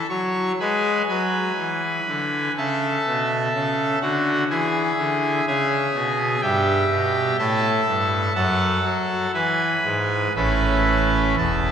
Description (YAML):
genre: classical, chorale-style piece for pipe organ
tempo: 62 BPM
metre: 4/4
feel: straight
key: A major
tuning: A4 = 440 Hz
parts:
  - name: pipe organ, trumpet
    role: solo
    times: 0.0-11.7 s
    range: E1 to C#6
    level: -19 LUFS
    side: equal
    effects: none
room: wet church reverb, RT60 2.8 s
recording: heard from further back in the room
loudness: -19 LUFS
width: side -8 dB against mid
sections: 0.0-11.7 A section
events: none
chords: 0.0 N.C.; 0.6 E7; 2.6 A; 4.5 E; 6.4 A5/G; 8.4 F#m; 9.4 E; 10.4 A